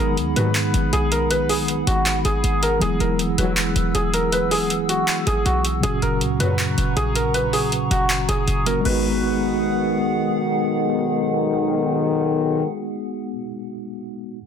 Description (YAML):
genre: hip hop, trap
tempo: 159 BPM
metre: 4/4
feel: half-time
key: G# minor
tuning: A4 = 440 Hz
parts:
  - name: felt-muted upright piano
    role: melody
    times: 0.0-9.9 s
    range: F#4 to B4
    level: -24 LUFS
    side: equal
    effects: low-pass filter, digital delay
  - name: mellow tine electric piano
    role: accompaniment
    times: 0.0-14.4 s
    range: A#2 to F#4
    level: -24 LUFS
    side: equal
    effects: medium stereo tremolo, low-pass filter
  - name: warbly tape-like pad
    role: sustained chords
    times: 0.0-12.6 s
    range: B3 to E6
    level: -28 LUFS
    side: right 1 dB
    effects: chorus, built-in reverb
  - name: short 808-style bass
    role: bass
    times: 0.0-10.3 s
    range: E1 to G#2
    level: -24 LUFS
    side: equal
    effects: none
  - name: booming analog drum machine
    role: drums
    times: 0.2-8.9 s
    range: crash cymbal, handclaps, hi-hat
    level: -25 LUFS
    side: equal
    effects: none
  - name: mellow brass ensemble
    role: stabs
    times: 0.4-0.5, 3.4-3.5, 6.4-6.5, 8.9-12.6 s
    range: B1 to F#3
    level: -24 LUFS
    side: left 5 dB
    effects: none
room: light reverb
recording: dense, heavily limited modern master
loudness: -18 LUFS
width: side -7 dB against mid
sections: 0.0-8.9 A section; 8.9-11.9 B section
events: none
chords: 0.0 G#m7; 2.8 Eadd9; 5.8 F#; 8.9 G#m7